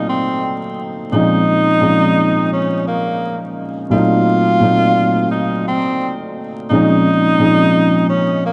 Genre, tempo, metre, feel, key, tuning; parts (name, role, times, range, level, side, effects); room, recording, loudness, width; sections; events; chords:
hip hop; 86 BPM; 4/4; swing 56% on 16ths; Bb minor; A4 = 440 Hz
breathy tenor saxophone; melody; 0.0-8.5 s; Bb3 to F4; -19 LUFS; equal; diffuse ambient delay
dark grand piano; accompaniment; 0.0-8.5 s; Bb2 to Eb4; -18 LUFS; equal; cassette tape
wet plate reverb, RT60 2.8 s; dreamy mix soaked in reverb, vinyl crackle, nothing above 10.7 kHz; -15 LUFS; mono
0.0-8.5 A section
0.0 F7b9/Bb (rootless); 1.1 Bbm11; 3.9 F7b9/Bb; 6.7 Bbm11